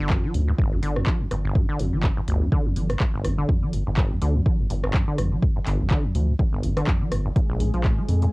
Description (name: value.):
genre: acid house.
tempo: 124 BPM.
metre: 4/4.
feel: swing 56% on 16ths.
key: G phrygian.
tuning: A4 = 444 Hz.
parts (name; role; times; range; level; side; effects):
acid bass, saw; riff; 0.0-8.3 s; G1 to Ab3; -26 LUFS; equal; tube saturation, analog delay.
round analog bass; bass; 0.0-8.3 s; G1 to F2; -24 LUFS; equal; tube saturation, sidechain pumping.
electronic kick drum; drums; 0.1-8.0 s; none; -22 LUFS; equal; overdrive, cassette tape.
punchy analog drum machine; drums; 0.1-8.3 s; handclaps, hi-hat, rim click; -31 LUFS; equal; overdrive, cassette tape.
warm analog pad; sustained chords; 7.4-8.3 s; Ab3 to Ab4; -32 LUFS; left 2 dB; chorus, sidechain pumping.
room: light reverb.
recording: home recording on cassette.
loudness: -20 LUFS.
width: side -24 dB against mid.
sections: 0.0-8.3 A section.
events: filter sweep on acid bass 0.0-8.3.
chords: 0.0 G5; 7.4 Bb7(no3).